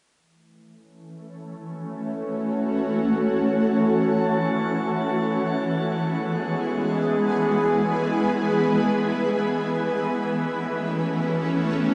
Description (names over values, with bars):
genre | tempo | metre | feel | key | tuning
ambient | free time | none | none | F# minor | A4 = 440 Hz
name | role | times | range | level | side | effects
shimmering ambient pad | solo | 1.5-11.9 s | E3 to B4 | -24 LUFS | equal | chorus, built-in reverb, phaser, diffuse ambient delay
room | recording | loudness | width
wet shimmer reverb, RT60 8.6 s | dark, warm production, nothing above 10.9 kHz | -23 LUFS | mono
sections
0.2-11.9 A section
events
none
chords
0.2 F#m7; 4.8 E; 9.5 A6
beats
free time